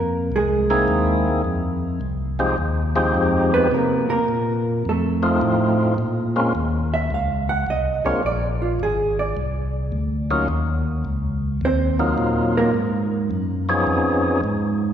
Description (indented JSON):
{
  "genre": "soul jazz organ trio",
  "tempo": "106 BPM",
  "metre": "4/4",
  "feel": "swing 66% on 8ths",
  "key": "F minor",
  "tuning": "A4 = 440 Hz",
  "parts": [
    { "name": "hollow-body jazz guitar", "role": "accompaniment", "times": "0.0-12.8 s", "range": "G#3 to Gb5", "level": "-23 LUFS", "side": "right 3 dB", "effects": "none" },
    { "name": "tonewheel organ", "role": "bass", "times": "0.0-14.9 s", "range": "Ab1 to C3", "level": "-22 LUFS", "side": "equal", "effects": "overdrive, slow rotary speaker" },
    { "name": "percussive tonewheel organ", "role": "melody", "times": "0.7-14.4 s", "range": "F3 to G#4", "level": "-22 LUFS", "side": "left 1 dB", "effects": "slow rotary speaker" }
  ],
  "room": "wet church reverb, RT60 2.6 s",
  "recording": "recorded in a church or concert hall",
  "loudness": "-18 LUFS",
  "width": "side -9 dB against mid",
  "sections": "0.0-6.0 A section; 6.0-14.9 A section",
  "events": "hollow-body jazz guitar solo 0.0-14.9",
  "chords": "0.3 C7alt; 1.5 Fm7; 3.7 Bbsus2; 4.9 F7; 6.0 Bbm7; 8.2 Bb7; 10.5 Ebm7; 12.8 Abm7; 13.9 Db7"
}